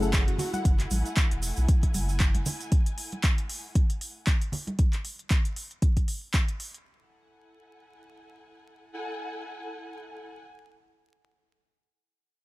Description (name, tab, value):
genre	deep house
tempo	116 BPM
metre	4/4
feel	swing 56% on 16ths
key	F# minor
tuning	A4 = 439 Hz
part	soft round pluck	arpeggios	0.0-0.6 s	F#4 to F#5	-36 LUFS	left 1 dB	chorus, sidechain pumping, digital delay
part	deep mellow chord stab	stabs	0.0-0.6 s	F#3 to G#4	-32 LUFS	left 4 dB	chorus, sidechain pumping, digital delay
part	warm sub bass	bass	0.0-2.4 s	E1 to B1	-28 LUFS	equal	tube saturation, sidechain pumping
part	tube shaker	percussion	0.0-2.7 s	none	-39 LUFS	right 5 dB	none
part	dark symphonic string section	texture	0.0-10.5 s	A3 to G#5	-40 LUFS	equal	sidechain pumping
part	breakbeat sampler-style drum kit	drums	0.1-0.5 s	ride cymbal, snare drum	-46 LUFS	right 1 dB	none
part	deep house drum kit	drums	0.1-6.8 s	handclaps, hi-hat	-33 LUFS	equal	none
part	electronic kick drum	drums	0.1-6.5 s	none	-23 LUFS	equal	none
part	congas	percussion	0.4-4.8 s	none	-34 LUFS	right 1 dB	none
room	little or no reverb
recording	vinyl crackle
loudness	-24 LUFS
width	side -20 dB against mid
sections	0.0-6.9 A section; 6.9-11.0 B section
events	fade-out on string section 0.0-4.8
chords	0.0 F#m9; 4.8 N.C.; 6.9 F#m9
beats	0.13 | 0.65 1.17 1.68 2.20 | 2.72 3.24 3.75 4.27 | 4.79 5.30 5.82 6.34 | 6.86 7.37 7.89 8.41 | 8.93 9.44 9.96